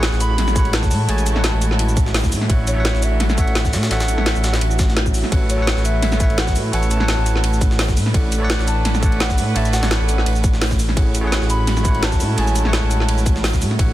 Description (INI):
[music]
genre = liquid drum and bass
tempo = 170 BPM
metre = 4/4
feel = swing 54% on 16ths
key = unclear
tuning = A4 = 441 Hz
[part]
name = bell-like tine electric piano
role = accompaniment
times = 0.0-13.9 s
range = G#3 to A5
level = -25 LUFS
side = right 1 dB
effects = vintage 12-bit sampler grit, digital delay
[part]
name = clear symphonic string section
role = sustained chords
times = 0.0-13.9 s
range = E3 to B4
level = -30 LUFS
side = right 4 dB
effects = sidechain pumping
[part]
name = dark detuned saw bass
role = bass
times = 0.0-13.9 s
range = A1 to A2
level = -19 LUFS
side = equal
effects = none
[part]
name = drum and bass drum kit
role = drums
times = 0.0-13.9 s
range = hi-hat, ride cymbal, shaker, snare drum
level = -23 LUFS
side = equal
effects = none
[part]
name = jungle sampler-style drum kit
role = drums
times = 0.0-13.9 s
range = hi-hat, ride cymbal, snare drum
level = -30 LUFS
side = right 1 dB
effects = high-pass filter on cymbals, high-pass filter on snare, high-pass filter on hats
[part]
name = hollow clarinet-like synth lead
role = melody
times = 0.2-13.3 s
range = C#5 to B5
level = -27 LUFS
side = equal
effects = chorus, digital delay
[part]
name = electronic kick drum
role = drums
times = 0.6-13.9 s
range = none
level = -18 LUFS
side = equal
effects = none
[sound]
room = light reverb, digital ambience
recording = dense, heavily limited modern master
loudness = -15 LUFS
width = side -14 dB against mid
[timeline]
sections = 0.0-13.9 A section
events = none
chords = 0.0 F#m7/A; 2.5 Dmaj7/A; 5.3 A69; 8.0 Bm9/A; 10.8 F#m7/A